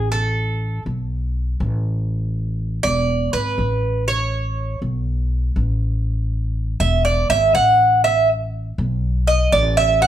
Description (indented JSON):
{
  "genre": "latin, Cuban son and guajira",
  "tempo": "121 BPM",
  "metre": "4/4",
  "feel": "straight",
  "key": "A major",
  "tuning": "A4 = 438 Hz",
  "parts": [
    { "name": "Cuban tres", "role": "arpeggios", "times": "0.0-10.1 s", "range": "A4 to F#5", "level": "-17 LUFS", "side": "right 2 dB", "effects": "none" },
    { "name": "upright bass", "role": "bass", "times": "0.0-10.1 s", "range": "E1 to B1", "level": "-20 LUFS", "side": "equal", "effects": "none" }
  ],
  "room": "light reverb",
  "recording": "band playing live in one room",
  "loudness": "-17 LUFS",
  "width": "side -11 dB against mid",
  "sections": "0.0-10.1 A section",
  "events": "Cuban tres solo 0.0-10.1",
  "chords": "0.1 Asus2; 2.1 A5; 3.1 E; 4.1 Asus2; 6.1 A5; 7.1 E; 8.0 Asus2",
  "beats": "| 0.12 0.61 1.11 1.60 | 2.10 2.59 3.09 3.58 | 4.08 4.58 5.07 5.57 | 6.06 6.56 7.05 7.55 | 8.04 8.54 9.03 9.53 | 10.02"
}